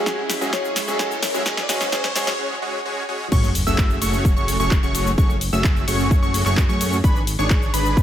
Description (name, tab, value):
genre	EDM, festival progressive house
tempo	129 BPM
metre	4/4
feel	straight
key	F# minor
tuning	A4 = 440 Hz
part	breathy flute-like synth lead	melody	0.0-2.4 s	G#4 to D5	-28 LUFS	left 1 dB	analog chorus, tape echo
part	bright grand piano	accompaniment	0.0-2.3 s	F#3 to G#4	-29 LUFS	right 1 dB	sidechain pumping, tape echo
part	lush unison pad	sustained chords	0.0-2.4 s	G#3 to E4	-35 LUFS	right 1 dB	none
part	dense compressed supersaw	riff	0.0-8.0 s	G#3 to E5	-25 LUFS	equal	sidechain pumping, tape echo
part	fat analog bass	bass	0.0-8.0 s	F#1 to F#2	-25 LUFS	equal	sidechain pumping, high-pass filter
part	riser and sub drop	sound effects	0.1-5.2 s	none	-29 LUFS	equal	none
part	electronic kick drum	drums	0.1-8.0 s	none	-18 LUFS	equal	high-pass filter on kick
part	house drum kit	drums	0.1-8.0 s	crash cymbal, handclaps, hi-hat, shaker, snare drum	-26 LUFS	left 1 dB	none
part	plucky unison lead	arpeggios	3.3-8.0 s	B5 to E6	-26 LUFS	equal	cassette tape, sidechain pumping, tape echo
room	light reverb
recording	high-pass filter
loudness	-18 LUFS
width	side -11 dB against mid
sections	0.0-3.3 A section; 3.3-8.0 B section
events	build-up 0.0-3.3; drum fill 0.0-2.4; riser 0.1-2.4; break 2.4-3.3; drop 3.3-8.0; impact 3.3-5.2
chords	0.0 C#m; 3.3 F#madd9; 7.0 G#dim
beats	0.06 0.53 0.99 | 1.46 1.92 2.39 2.85 | 3.32 3.78 4.25 4.71 | 5.18 5.64 6.11 6.57 | 7.04 7.50 7.97